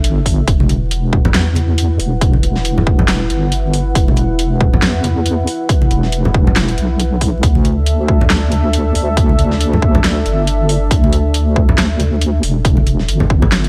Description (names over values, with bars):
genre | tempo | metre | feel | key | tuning
deep dubstep | 138 BPM | 4/4 | swing 57% on 16ths, half-time | E minor | A4 = 442 Hz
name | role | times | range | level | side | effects
dark analog pad | sustained chords | 0.0-13.7 s | D4 to F#5 | -24 LUFS | equal | chorus
deep soft wobble bass | bass | 0.0-13.7 s | E1 to E2 | -18 LUFS | equal | chorus
dubstep drum kit | drums | 0.0-13.7 s | handclaps, hi-hat, snare drum | -21 LUFS | equal | none
electronic kick drum | drums | 0.3-13.4 s | none | -16 LUFS | equal | none
congas | percussion | 0.6-13.5 s | none | -21 LUFS | equal | none
room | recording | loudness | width
digital ambience | vinyl crackle | -14 LUFS | mono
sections
0.0-13.7 A section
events
none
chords
0.5 E5; 7.4 Dsus4